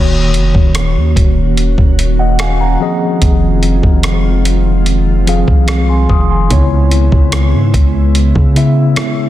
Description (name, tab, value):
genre	contemporary R&B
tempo	73 BPM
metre	4/4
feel	straight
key	unclear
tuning	A4 = 441 Hz
part	mellow tine electric piano	accompaniment	0.0-9.3 s	Db3 to Eb6	-16 LUFS	left 1 dB	medium stereo tremolo
part	glassy FM pad	sustained chords	0.4-9.3 s	Db3 to Gb4	-19 LUFS	equal	ensemble chorus, built-in reverb, sidechain pumping
part	long sustained 808-style bass	bass	0.0-8.9 s	Eb1 to Db3	-12 LUFS	equal	none
part	dusty soul sampler-style drum kit	drums	0.3-9.2 s	hi-hat, kick drum, rim click	-13 LUFS	equal	soft clipping on snare
room	little or no reverb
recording	dense, heavily limited modern master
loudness	-9 LUFS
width	side -13 dB against mid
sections	0.0-9.3 A section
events	none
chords	0.0 Ebm7; 2.8 Fm7; 6.5 Dbm7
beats	0.75 1.57 2.40 | 3.22 4.04 4.86 5.68 | 6.50 7.33 8.15 8.97